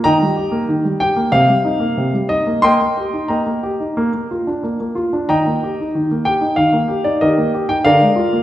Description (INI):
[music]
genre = classical-period piano sonatina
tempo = 93 BPM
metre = 4/4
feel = straight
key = Eb major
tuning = A4 = 441 Hz
[part]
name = warm baby grand piano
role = solo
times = 0.0-8.4 s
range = C3 to C6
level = -14 LUFS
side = equal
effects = none
[sound]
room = wet recital hall reverb, RT60 1.5 s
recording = heard from further back in the room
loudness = -14 LUFS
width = side -13 dB against mid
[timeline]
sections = 0.0-8.4 A section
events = none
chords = 0.1 Eb; 1.3 Cm7; 2.6 Eb/Bb; 4.0 Bb; 5.3 Eb; 7.8 Bb7/D